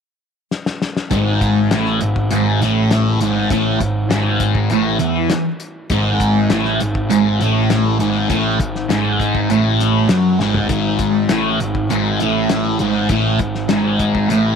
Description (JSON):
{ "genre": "psychedelic rock", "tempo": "100 BPM", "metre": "4/4", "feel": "straight", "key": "unclear", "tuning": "A4 = 440 Hz", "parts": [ { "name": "cloth-damped thuddy drum kit", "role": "drums", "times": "0.5-14.4 s", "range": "hi-hat, kick drum, snare drum, toms", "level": "-22 LUFS", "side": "left 3 dB", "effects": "none" }, { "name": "thick fuzz guitar", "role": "riff", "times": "1.1-14.6 s", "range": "G#2 to F#3", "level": "-15 LUFS", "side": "equal", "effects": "distortion, phaser" }, { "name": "fuzz picked electric bass", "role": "bass", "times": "1.1-14.6 s", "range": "G#1 to F#2", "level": "-23 LUFS", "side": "equal", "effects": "overdrive" } ], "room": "moderate spring reverb, RT60 2.5 s", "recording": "1960s-style stereo", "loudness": "-14 LUFS", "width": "side -6 dB against mid", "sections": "0.0-1.1 A section; 1.1-14.6 B section", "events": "drum fill 0.5-1.1, 10.4-10.7", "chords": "0.0 N.C.; 1.1 G#5", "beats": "0.52 | 1.12 1.72 2.31 2.91 | 3.51 4.11 4.71 5.30 | 5.90 6.50 7.10 7.70 | 8.30 8.90 9.50 10.10 | 10.70 11.30 11.90 12.50 | 13.10 13.70 14.30" }